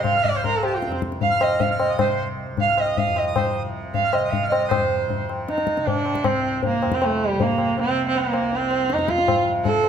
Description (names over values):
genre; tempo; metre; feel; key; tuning
indian classical, Hindustani; 156 BPM; 4/4; straight; C raga bageshri; A4 = 439 Hz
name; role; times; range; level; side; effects
rich sarangi; melody; 0.0-9.9 s; A3 to F5; -21 LUFS; right 3 dB; none
accordion; second line; 0.0-4.8 s; C5 to F6; -32 LUFS; right 2 dB; none
tanpura; drone; 0.0-9.9 s; C2 to C3; -32 LUFS; right 1 dB; none
tabla; percussion; 0.0-9.9 s; none; -24 LUFS; left 4 dB; none
room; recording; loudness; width
moderate recital hall reverb, RT60 1.6 s; none; -19 LUFS; side -8 dB against mid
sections
0.0-4.7 A section; 4.7-9.9 B section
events
speeding up 0.0-9.9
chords
none